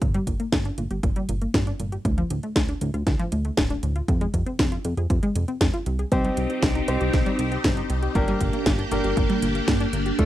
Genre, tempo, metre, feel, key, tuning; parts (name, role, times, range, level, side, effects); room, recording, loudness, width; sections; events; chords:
italo disco; 118 BPM; 4/4; straight; A4 = 435 Hz
analog pluck; arpeggios; 0.0-10.3 s; A2 to Ab4; -30 LUFS; right 1 dB; chorus, tape echo
chorused synth bass; bass; 0.0-10.3 s; D1 to G2; -26 LUFS; equal; tube saturation
electronic kick drum; drums; 0.0-10.3 s; -25 LUFS; equal; studio reverb
house drum kit; drums; 0.0-10.3 s; hi-hat, snare drum; -26 LUFS; equal; studio reverb
phased string machine; sustained chords; 6.1-10.3 s; D3 to A4; -27 LUFS; equal; ensemble chorus, phaser
bright grand piano; stabs; 6.1-10.3 s; A3 to C5; -28 LUFS; left 1 dB; tape echo
little or no reverb; dry, close 1970s-style studio recording; -21 LUFS; side -13 dB against mid
0.0-10.3 A section
0.0 Gm; 2.1 Dm; 4.1 Fm; 6.1 Cm; 8.2 Gm